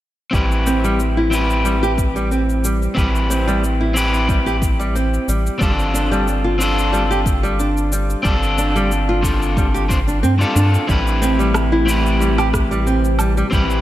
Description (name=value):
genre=organic downtempo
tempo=91 BPM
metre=4/4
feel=swing 53% on 16ths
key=A minor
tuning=A4 = 439 Hz
part: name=electric guitar at the edge of break-up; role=accompaniment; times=0.3-13.8 s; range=C4 to C5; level=-20 LUFS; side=left 1 dB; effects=spring reverb, sidechain pumping, digital delay
part: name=nylon-string guitar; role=arpeggios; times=0.3-13.6 s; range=G3 to G4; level=-21 LUFS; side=right 1 dB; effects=digital delay
part: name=round analog bass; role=bass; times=0.3-13.8 s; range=G1 to G2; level=-19 LUFS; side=equal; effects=none
part: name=electronic cabasa, rim click and woodblock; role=drums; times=0.3-13.8 s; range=none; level=-28 LUFS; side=equal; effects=none
part: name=electronic kick drum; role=drums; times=0.3-13.7 s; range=none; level=-20 LUFS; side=equal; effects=none
part: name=warbly tape-like pad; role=sustained chords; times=11.1-13.8 s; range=C3 to B4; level=-25 LUFS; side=equal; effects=chorus, built-in reverb, sidechain pumping
room=light reverb, digital ambience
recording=bright 1980s-style digital production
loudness=-15 LUFS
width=side -14 dB against mid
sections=0.3-13.8 A section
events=none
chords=0.3 Am7; 5.6 G7sus4; 10.9 Am7